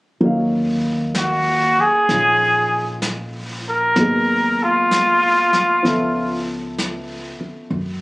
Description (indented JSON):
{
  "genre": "jazz ballad",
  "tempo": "64 BPM",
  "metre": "4/4",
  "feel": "swing 68% on 8ths",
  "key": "Eb minor",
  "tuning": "A4 = 440 Hz",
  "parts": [
    { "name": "warm baby grand piano", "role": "accompaniment", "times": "0.2-7.7 s", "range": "F3 to F5", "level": "-22 LUFS", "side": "equal", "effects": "none" },
    { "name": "upright bass", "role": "bass", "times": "0.2-8.0 s", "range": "Ab1 to Gb2", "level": "-27 LUFS", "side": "equal", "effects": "none" },
    { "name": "vintage brush drum kit", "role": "drums", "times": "0.2-8.0 s", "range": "brushed snare drum, hi-hat, snare drum", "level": "-28 LUFS", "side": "equal", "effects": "none" },
    { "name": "trumpet with straight mute", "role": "melody", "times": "1.2-6.5 s", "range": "F4 to Bb4", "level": "-15 LUFS", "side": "equal", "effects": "none" }
  ],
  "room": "light reverb",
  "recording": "recorded on a phone in the room, club reverb, compression",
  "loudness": "-15 LUFS",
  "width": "side -22 dB against mid",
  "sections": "0.2-8.0 A section",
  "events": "none",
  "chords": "0.2 Ebm9; 4.0 Abm9; 5.8 Db7alt"
}